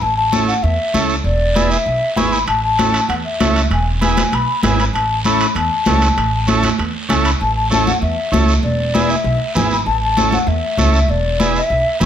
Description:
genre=latin, cumbia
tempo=195 BPM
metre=4/4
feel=straight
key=A major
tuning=A4 = 438 Hz
part: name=breathy mellow jazz flute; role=melody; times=0.0-12.1 s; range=D5 to C#6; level=-19 LUFS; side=left 2 dB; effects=none
part: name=upright bass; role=bass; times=0.0-12.1 s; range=E1 to E2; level=-19 LUFS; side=equal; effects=none
part: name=guiro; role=percussion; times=0.0-12.1 s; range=none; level=-26 LUFS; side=right 2 dB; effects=none
part: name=combo organ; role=accompaniment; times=0.3-12.1 s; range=B3 to A4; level=-21 LUFS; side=right 3 dB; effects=none
part: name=congas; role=percussion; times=0.3-12.1 s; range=none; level=-20 LUFS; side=left 1 dB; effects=none
part: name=timbales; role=percussion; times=2.5-7.4 s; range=none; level=-26 LUFS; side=right 5 dB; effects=none
room=light reverb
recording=none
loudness=-14 LUFS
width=side -9 dB against mid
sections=0.0-7.4 A section; 7.4-12.1 A section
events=none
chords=0.0 A; 1.2 E7; 2.5 A; 3.7 E; 4.9 A; 8.6 E7; 9.9 A; 11.1 E7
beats=| 0.02 0.33 0.64 0.94 | 1.25 1.56 1.86 2.17 | 2.48 2.79 3.10 3.40 | 3.71 4.02 4.33 4.63 | 4.94 5.25 5.56 5.86 | 6.17 6.48 6.79 7.09 | 7.40 7.71 8.02 8.32 | 8.63 8.94 9.25 9.55 | 9.86 10.17 10.47 10.78 | 11.09 11.40 11.70 12.01

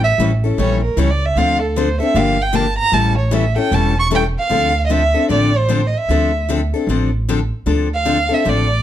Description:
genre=acoustic string swing (jazz manouche)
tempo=153 BPM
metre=4/4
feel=swing 62% on 8ths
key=D minor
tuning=A4 = 440 Hz
part: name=warm violin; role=melody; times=0.0-8.8 s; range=A4 to C#6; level=-18 LUFS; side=right 3 dB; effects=plate reverb
part: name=upright bass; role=bass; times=0.0-8.8 s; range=E1 to D2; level=-18 LUFS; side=right 1 dB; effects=none
part: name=picked steel-string acoustic guitar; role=accompaniment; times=0.2-8.7 s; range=D3 to A4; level=-19 LUFS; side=left 6 dB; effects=none
room=moderate studio reverb, RT60 0.6 s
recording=dark, warm production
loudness=-14 LUFS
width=side -11 dB against mid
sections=0.0-4.5 A section; 4.5-8.8 B section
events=violin solo 0.0-4.5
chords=0.0 A7; 1.4 Dm7; 2.2 Gm7; 2.9 A7; 4.5 Dm9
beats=0.19 0.58 0.97 | 1.37 1.76 2.15 2.55 | 2.94 3.33 3.72 4.12 | 4.51 4.90 5.30 5.69 | 6.08 6.48 6.87 7.27 | 7.66 8.05 8.45

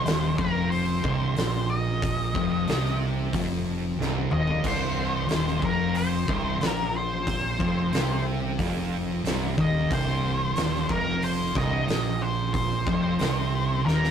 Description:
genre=stoner and doom metal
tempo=91 BPM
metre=4/4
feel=straight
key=C minor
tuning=A4 = 440 Hz
part: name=octave-fuzz lead guitar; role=melody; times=0.0-14.1 s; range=Bb4 to Eb5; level=-29 LUFS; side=left 1 dB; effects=wah, distortion
part: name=thick fuzz guitar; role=riff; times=0.0-14.1 s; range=C2 to C3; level=-30 LUFS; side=left 4 dB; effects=distortion
part: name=thick fuzz guitar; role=riff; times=0.0-14.1 s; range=C2 to C3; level=-28 LUFS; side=right 4 dB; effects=distortion
part: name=growling fingered electric bass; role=bass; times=0.0-14.1 s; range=C1 to C2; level=-33 LUFS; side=equal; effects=overdrive
part: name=oversized low-tuned drum kit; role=drums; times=0.1-14.1 s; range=crash cymbal, hi-hat, kick drum, snare drum, toms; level=-30 LUFS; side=equal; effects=none
room=light reverb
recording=rough rehearsal-room recording, tube saturation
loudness=-23 LUFS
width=side -8 dB against mid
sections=0.0-14.1 A section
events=drum fill 4.0-4.7, 13.8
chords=0.0 Cm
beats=0.05 0.71 1.37 | 2.02 2.68 3.34 3.99 | 4.65 5.31 5.96 6.62 | 7.28 7.93 8.59 9.25 | 9.91 10.56 11.22 11.88 | 12.54 13.19 13.85

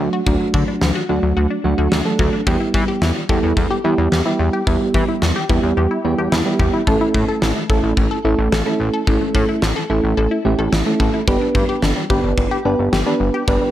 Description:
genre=synth-pop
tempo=109 BPM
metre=4/4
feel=straight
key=unclear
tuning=A4 = 436 Hz
part: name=mellow FM electric piano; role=accompaniment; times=0.0-13.7 s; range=F#3 to B4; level=-19 LUFS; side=right 3 dB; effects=chorus
part: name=wide unison pluck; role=arpeggios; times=0.0-13.7 s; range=F#3 to A4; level=-23 LUFS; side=left 4 dB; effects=slapback echo
part: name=chorused synth bass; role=bass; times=0.0-13.6 s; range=G1 to E3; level=-20 LUFS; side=left 1 dB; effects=none
part: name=gated 80s drum kit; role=drums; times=0.3-13.6 s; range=kick drum, snare drum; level=-20 LUFS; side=equal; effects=none
room=light reverb, small room ambience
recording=none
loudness=-15 LUFS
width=side -12 dB against mid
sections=0.0-13.7 A section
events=none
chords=0.0 D; 2.5 Em; 6.9 A; 11.3 G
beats=| 0.27 0.82 1.37 1.92 | 2.47 3.02 3.57 4.12 | 4.67 5.22 5.77 6.32 | 6.87 7.42 7.97 8.52 | 9.07 9.62 10.17 10.72 | 11.28 11.83 12.38 12.93 | 13.48

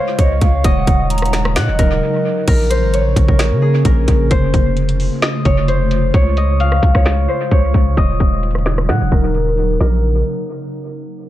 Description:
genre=hip hop, trap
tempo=131 BPM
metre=4/4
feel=half-time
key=Bb minor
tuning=A4 = 439 Hz
part: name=concert harp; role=melody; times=0.0-10.0 s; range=Ab4 to Gb5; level=-20 LUFS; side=left 1 dB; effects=dub echo
part: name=hollow clarinet-like synth lead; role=second line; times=0.0-2.4 s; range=Db5 to Bb5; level=-23 LUFS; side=right 2 dB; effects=chorus, dub echo
part: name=ethereal airy pad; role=sustained chords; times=0.0-10.0 s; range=Db3 to F4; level=-22 LUFS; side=right 1 dB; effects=ensemble chorus, built-in reverb
part: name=long sustained 808-style bass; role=bass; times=0.2-10.2 s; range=Eb1 to Db3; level=-16 LUFS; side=equal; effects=none
part: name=trap drum kit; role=drums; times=0.2-9.9 s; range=crash cymbal, finger snaps, hi-hat, kick drum, rim click, snare drum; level=-17 LUFS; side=equal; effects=dub echo
room=little or no reverb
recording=echo-heavy mix, low-pass filter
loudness=-12 LUFS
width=side -14 dB against mid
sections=0.0-2.5 A section; 2.5-9.8 B section; 9.8-11.3 C section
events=break 2.0-2.5; filter sweep 2.5-9.8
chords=0.0 Db; 0.6 Ebm7; 2.5 Bbm; 4.3 F; 6.1 Db; 8.0 Ebm7; 9.8 Bbmadd9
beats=0.19 | 0.64 1.10 1.56 2.02 | 2.48 2.93 3.39 3.85 | 4.31 4.77 5.22 5.68 | 6.14 6.60 7.06 7.51 | 7.97 8.43 8.89 9.35 | 9.80

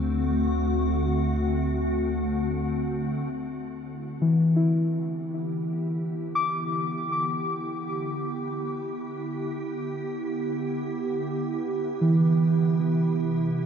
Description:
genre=ambient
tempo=free time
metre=none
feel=none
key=G major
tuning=A4 = 437 Hz
part: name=soft additive organ-like pad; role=sustained chords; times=0.0-13.7 s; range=C3 to G4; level=-28 LUFS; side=equal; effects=ensemble chorus, built-in reverb, shimmer reverb
part: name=deep rumbling drone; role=bass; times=0.0-3.3 s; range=D2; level=-29 LUFS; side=equal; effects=built-in reverb, phaser, tube saturation
part: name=muted felt-like synth keys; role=arpeggios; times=4.2-13.7 s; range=E3 to D6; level=-24 LUFS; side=equal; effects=chorus, ping-pong delay
room=wet huge ambient reverb, RT60 7.4 s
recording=dark, warm production, nothing above 10.3 kHz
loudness=-24 LUFS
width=side -7 dB against mid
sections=0.0-3.3 A section; 3.3-13.7 B section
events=fade-in on ambient pad 3.3-13.7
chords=0.0 D7; 3.3 G6; 12.6 Cmaj7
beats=free time

